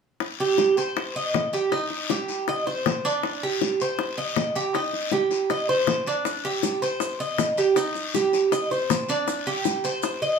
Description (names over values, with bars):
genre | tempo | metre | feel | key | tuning
latin, Cuban son and guajira | 159 BPM | 4/4 | straight | unclear | A4 = 437 Hz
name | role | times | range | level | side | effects
bongos | percussion | 0.2-10.2 s | none | -27 LUFS | left 6 dB | none
guiro | percussion | 0.2-10.4 s | none | -33 LUFS | left 6 dB | none
Cuban tres | arpeggios | 0.4-10.4 s | D4 to Eb5 | -23 LUFS | right 3 dB | none
maracas | percussion | 6.3-10.4 s | none | -38 LUFS | right 4 dB | none
room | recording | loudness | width
wet studio reverb, RT60 0.5 s | band playing live in one room | -22 LUFS | side -6 dB against mid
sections
0.2-10.4 A section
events
none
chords
none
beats
| 0.21 0.59 0.97 1.35 | 1.73 2.10 2.48 2.86 | 3.24 3.61 3.99 4.37 | 4.75 5.12 5.50 5.88 | 6.25 6.63 7.01 7.39 | 7.76 8.14 8.52 8.90 | 9.27 9.65 10.03